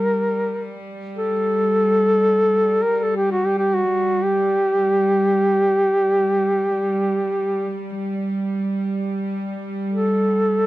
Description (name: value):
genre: caucasian folk, Caucasian lament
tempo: free time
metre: none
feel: none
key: G harmonic minor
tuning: A4 = 439 Hz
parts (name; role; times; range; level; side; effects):
- mellow duduk; melody; 0.0-10.7 s; F#4 to Bb4; -18 LUFS; equal; none
- clear studio cello section; drone; 0.0-10.7 s; G3; -24 LUFS; right 1 dB; none
room: light reverb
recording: dry, close 1970s-style studio recording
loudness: -18 LUFS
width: side -17 dB against mid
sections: 0.0-10.7 A section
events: none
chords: none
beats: free time